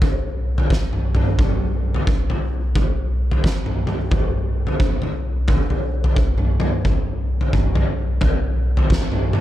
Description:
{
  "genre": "metal",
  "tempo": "88 BPM",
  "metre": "4/4",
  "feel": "swing 64% on 8ths",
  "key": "none",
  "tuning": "none",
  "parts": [
    { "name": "oversized low-tuned drum kit", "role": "drums", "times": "0.0-9.4 s", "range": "kick drum, snare drum, toms", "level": "-18 LUFS", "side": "equal", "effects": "none" }
  ],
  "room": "little or no reverb",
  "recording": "none",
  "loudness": "-18 LUFS",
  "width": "side -13 dB against mid",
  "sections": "0.0-9.4 A section",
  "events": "none",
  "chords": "none",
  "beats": "| 0.02 0.70 1.39 2.07 | 2.75 3.43 4.12 4.80 | 5.48 6.17 6.85 7.53 | 8.22 8.90"
}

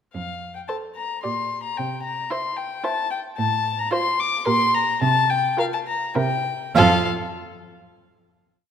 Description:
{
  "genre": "quick classical-period movement for string quartet",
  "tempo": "98-113 BPM",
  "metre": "3/4",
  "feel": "rubato",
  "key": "F major",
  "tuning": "A4 = 439 Hz",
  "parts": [
    { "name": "dark violin", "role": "melody", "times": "0.1-7.1 s", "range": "F5 to D6", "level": "-23 LUFS", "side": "left 4 dB", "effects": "none" },
    { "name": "dark cello", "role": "bass", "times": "0.1-7.1 s", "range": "F2 to C3", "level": "-24 LUFS", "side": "right 4 dB", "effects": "none" },
    { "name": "warm violin", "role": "second line", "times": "0.7-7.1 s", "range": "A4 to D5", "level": "-27 LUFS", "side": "left 1 dB", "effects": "none" },
    { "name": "warm viola", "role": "accompaniment", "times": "0.7-7.1 s", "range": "E4 to A4", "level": "-26 LUFS", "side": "right 5 dB", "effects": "none" }
  ],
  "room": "moderate scoring stage reverb, RT60 1.7 s",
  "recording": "none",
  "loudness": "-20 LUFS",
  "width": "side -8 dB against mid",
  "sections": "0.1-6.8 A section; 6.8-8.5 final chord",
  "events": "none",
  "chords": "0.1 F; 1.2 Gm/Bb; 1.8 C; 3.4 F/A; 4.5 Gm/Bb; 5.0 C7sus4; 6.2 C7; 6.8 N.C.",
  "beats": "| 0.14 0.69 1.24 | 1.78 2.31 2.85 | 3.38 3.92 4.47 | 5.01 5.58 6.16 | 6.75"
}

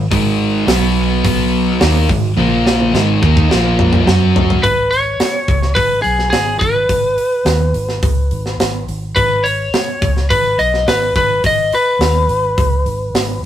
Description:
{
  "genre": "hard rock",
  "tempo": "106 BPM",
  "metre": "4/4",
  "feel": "straight",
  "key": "G# minor",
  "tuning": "A4 = 440 Hz",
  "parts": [
    { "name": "distorted electric guitar", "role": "riff", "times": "0.0-4.6 s", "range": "G#2 to F#4", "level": "-18 LUFS", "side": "left 5 dB", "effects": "overdrive" },
    { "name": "sludgy distorted guitar", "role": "riff", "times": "0.0-4.6 s", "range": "G#2 to F#4", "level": "-17 LUFS", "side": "right 4 dB", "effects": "overdrive" },
    { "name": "vintage muted fingered electric bass", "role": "bass", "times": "0.0-13.5 s", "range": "G#1 to F#2", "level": "-18 LUFS", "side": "equal", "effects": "none" },
    { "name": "tight metal drum kit", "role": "drums", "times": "0.1-13.3 s", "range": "hi-hat, kick drum, snare drum, toms", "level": "-18 LUFS", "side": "equal", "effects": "none" },
    { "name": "lightly driven lead guitar", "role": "melody", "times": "4.6-13.4 s", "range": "G#4 to D#5", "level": "-15 LUFS", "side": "left 1 dB", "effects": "none" }
  ],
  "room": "light reverb",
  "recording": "rough rehearsal-room recording",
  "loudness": "-12 LUFS",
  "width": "side -11 dB against mid",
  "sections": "0.0-4.6 A section; 4.6-13.5 B section",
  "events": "drum fill 2.4-4.6",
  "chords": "0.0 G#5; 0.7 B5; 1.8 G#5; 2.4 A#5; 2.9 G#5; 3.5 A#5; 4.1 F#5; 4.6 G#m",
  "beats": "| 0.10 0.67 1.24 1.80 | 2.37 2.93 3.50 4.06 | 4.63 5.19 5.76 6.33 | 6.89 7.46 8.03 8.60 | 9.16 9.73 10.30 10.87 | 11.44 12.01 12.57 13.14"
}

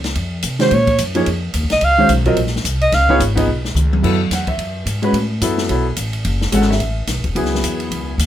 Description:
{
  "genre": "modal jazz",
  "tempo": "216 BPM",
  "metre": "4/4",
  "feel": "swing 59% on 8ths",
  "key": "F# minor from 4.0 s",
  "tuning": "A4 = 438 Hz",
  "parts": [
    { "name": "upright bass", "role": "bass", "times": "0.0-8.3 s", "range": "E1 to C3", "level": "-19 LUFS", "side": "equal", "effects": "none" },
    { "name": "open jazz drum kit", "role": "drums", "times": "0.0-8.3 s", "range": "crash cymbal, hi-hat, kick drum, ride cymbal, snare drum, toms", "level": "-23 LUFS", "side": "equal", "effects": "none" },
    { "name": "breathy alto saxophone", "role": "melody", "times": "0.6-3.2 s", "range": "C5 to F5", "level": "-14 LUFS", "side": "right 2 dB", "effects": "none" },
    { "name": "warm concert grand piano", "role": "accompaniment", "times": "0.6-8.1 s", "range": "Eb3 to F#5", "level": "-18 LUFS", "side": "equal", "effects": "none" }
  ],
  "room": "light reverb",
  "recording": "none",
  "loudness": "-14 LUFS",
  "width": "side -11 dB against mid",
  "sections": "0.0-4.0 A section; 4.0-8.3 A section",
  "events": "alto saxophone solo 0.0-4.0; drum fill 3.8",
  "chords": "0.0 Bbmadd9; 2.9 Db7; 4.0 F#m11; 6.2 C#m",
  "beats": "0.15 0.43 | 0.70 0.98 1.26 1.54 | 1.81 2.09 2.37 2.64 | 2.92 3.20 3.47 3.75 | 4.03 4.31 4.58 4.86 | 5.14 5.42 5.69 5.97 | 6.25 6.52 6.80 7.08 | 7.36 7.63 7.91 8.19"
}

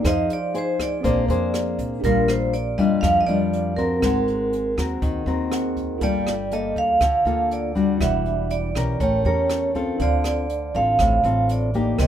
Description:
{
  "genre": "bossa nova",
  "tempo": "121 BPM",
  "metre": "4/4",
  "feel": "straight",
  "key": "Bb major",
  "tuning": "A4 = 440 Hz",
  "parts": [
    { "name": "vibraphone with medium hard mallets", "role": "melody", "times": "0.0-12.1 s", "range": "Bb4 to F5", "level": "-23 LUFS", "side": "right 2 dB", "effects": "none" },
    { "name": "barky tine electric piano", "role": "accompaniment", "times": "0.0-12.1 s", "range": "C4 to G5", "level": "-30 LUFS", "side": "right 4 dB", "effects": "phaser" },
    { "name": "nylon-string guitar", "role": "accompaniment", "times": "0.0-12.1 s", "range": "A2 to C5", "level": "-24 LUFS", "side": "left 4 dB", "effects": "none" },
    { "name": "upright bass", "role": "bass", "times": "0.0-12.1 s", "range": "E1 to F2", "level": "-26 LUFS", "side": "equal", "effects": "none" },
    { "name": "jazz brush drum kit", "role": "drums", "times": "0.0-12.1 s", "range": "hi-hat, kick drum, rim click", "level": "-29 LUFS", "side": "equal", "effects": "none" }
  ],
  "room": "light reverb",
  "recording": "minimal, uncompressed stereo recording",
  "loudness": "-19 LUFS",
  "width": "side -10 dB against mid",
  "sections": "0.0-2.0 A section; 2.0-12.1 B section",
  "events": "none",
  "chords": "0.0 Fm7; 1.0 Bb9; 2.0 Bb6; 4.0 Ab9; 6.0 Gm9; 8.0 Em9; 9.0 A7b9; 10.0 Dm7",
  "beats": "| 0.04 0.54 1.04 1.53 | 2.03 2.53 3.03 3.52 | 4.02 4.52 5.02 5.51 | 6.01 6.51 7.01 7.50 | 8.00 8.50 9.00 9.49 | 9.99 10.49 10.99 11.48 | 11.98"
}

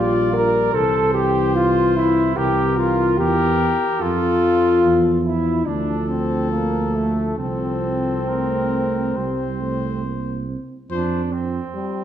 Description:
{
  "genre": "classical, brass quintet",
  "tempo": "67-75 BPM",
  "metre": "4/4",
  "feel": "rubato",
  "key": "F major",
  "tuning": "A4 = 439 Hz",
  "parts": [
    { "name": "warm trumpet", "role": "melody", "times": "0.0-11.2 s", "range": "A4 to D5", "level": "-27 LUFS", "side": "left 6 dB", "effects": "none" },
    { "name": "warm flugelhorn", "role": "second line", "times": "0.0-12.0 s", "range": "A3 to Bb4", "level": "-26 LUFS", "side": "right 6 dB", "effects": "none" },
    { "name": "dark euphonium", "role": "accompaniment", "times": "0.0-11.2 s", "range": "E3 to C4", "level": "-28 LUFS", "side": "right 1 dB", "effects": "none" },
    { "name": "warm French horn", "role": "accompaniment", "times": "0.0-12.0 s", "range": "G3 to Bb4", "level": "-20 LUFS", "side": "left 3 dB", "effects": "none" },
    { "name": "dark tuba", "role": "bass", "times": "0.0-11.6 s", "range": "Bb1 to F2", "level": "-23 LUFS", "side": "right 4 dB", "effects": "none" }
  ],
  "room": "wet recital hall reverb, RT60 1.4 s",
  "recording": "dark, warm production",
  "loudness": "-17 LUFS",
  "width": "side -10 dB against mid",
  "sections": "0.0-10.9 A section; 10.9-12.0 B section",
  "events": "none",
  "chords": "0.0 Gm/Bb; 0.7 C; 2.4 C7; 4.0 F; 5.7 Dm; 7.4 F/C; 9.2 C5; 10.9 F5",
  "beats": "| 0.74 1.56 2.37 3.19 | 4.01 4.83 5.66 6.51 | 7.38 8.28 9.16 10.04 | 10.91 11.74"
}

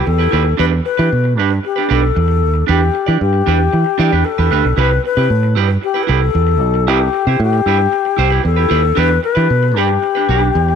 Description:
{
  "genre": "disco",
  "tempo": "114 BPM",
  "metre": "4/4",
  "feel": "straight",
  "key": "unclear",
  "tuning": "A4 = 440 Hz",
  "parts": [
    { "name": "alto flute", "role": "melody", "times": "0.0-10.8 s", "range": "G4 to B4", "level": "-17 LUFS", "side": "left 11 dB", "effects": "none" },
    { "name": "semi-hollow electric guitar", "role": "accompaniment", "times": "0.0-10.7 s", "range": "D4 to D5", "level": "-19 LUFS", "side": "right 14 dB", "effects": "none" },
    { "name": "fingered electric bass", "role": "bass", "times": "0.1-10.8 s", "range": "B1 to E3", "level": "-14 LUFS", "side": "right 2 dB", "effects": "none" }
  ],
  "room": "light reverb, small room ambience",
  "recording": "1960s-style stereo with parts hard left and right",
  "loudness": "-12 LUFS",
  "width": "side -7 dB against mid",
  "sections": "0.0-10.8 A section",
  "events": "none",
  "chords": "0.0 Cmaj7 (rootless); 0.6 Em7; 4.8 Cmaj7; 9.0 Em7",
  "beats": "0.06 | 0.58 1.10 1.63 2.15 | 2.68 3.20 3.73 4.25 | 4.77 5.30 5.82 6.35 | 6.87 7.40 7.92 8.45 | 8.97 9.50 10.02 10.55"
}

